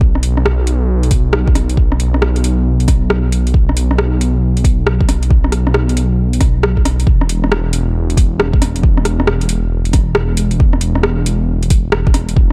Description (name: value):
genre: future garage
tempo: 136 BPM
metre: 4/4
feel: swing 64% on 16ths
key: unclear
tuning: A4 = 441 Hz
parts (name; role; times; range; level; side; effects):
- swelling detuned saw bass; bass; 0.0-12.5 s; E1 to B1; -17 LUFS; equal; sidechain pumping
- electronic kick drum; drums; 0.0-12.5 s; none; -15 LUFS; equal; overdrive, small room ambience
- deep house drum kit; drums; 0.2-12.3 s; hi-hat, rim click; -21 LUFS; equal; overdrive, small room ambience
room: little or no reverb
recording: dark, warm production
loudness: -14 LUFS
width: mono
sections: 0.0-7.1 A section; 7.1-12.5 B section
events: none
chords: none